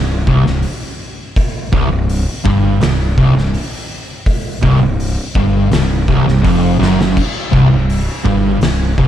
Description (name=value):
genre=stoner and doom metal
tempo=83 BPM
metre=4/4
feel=straight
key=unclear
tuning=A4 = 442 Hz
part: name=fuzz guitar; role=riff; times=0.0-9.1 s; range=C2 to G2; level=-13 LUFS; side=equal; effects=distortion
part: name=fuzz fingered electric bass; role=bass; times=0.0-9.1 s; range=C1 to G1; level=-17 LUFS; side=equal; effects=overdrive
part: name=oversized low-tuned drum kit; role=drums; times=0.3-9.1 s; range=crash cymbal, hi-hat, kick drum, snare drum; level=-18 LUFS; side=equal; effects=none
room=moderate studio reverb, RT60 0.7 s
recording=dark, warm production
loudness=-12 LUFS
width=side -11 dB against mid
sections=0.0-7.2 A section; 7.2-9.1 A section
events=drum fill 6.8-7.2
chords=0.0 C5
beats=0.64 | 1.36 2.09 2.82 3.54 | 4.27 5.00 5.72 6.45 | 7.17 7.90 8.62